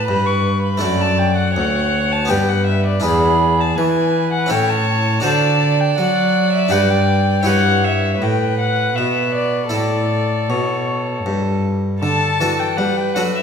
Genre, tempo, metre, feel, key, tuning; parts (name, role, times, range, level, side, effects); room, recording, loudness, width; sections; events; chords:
classical, baroque-style sonata movement with continuo; 80 BPM; 3/4; straight; D major; A4 = 440 Hz
dark violin; melody; 0.0-13.4 s; C#5 to C#6; -20 LUFS; left 4 dB
rich violin; second line; 0.0-13.4 s; G#4 to D5; -22 LUFS; right 7 dB
harpsichord; accompaniment; 0.0-13.4 s; D2 to C5; -21 LUFS; left 2 dB
warm cello; bass; 0.0-13.4 s; D2 to G3; -20 LUFS; equal
wet recital hall reverb, RT60 1.4 s; minimal, uncompressed stereo recording; -15 LUFS; side -7 dB against mid
0.0-12.0 A section; 12.0-13.4 A section
0.0 G; 0.8 D/F#; 2.3 G; 3.0 E7; 4.5 A; 5.2 D7; 6.7 G; 7.5 Em/G; 12.0 D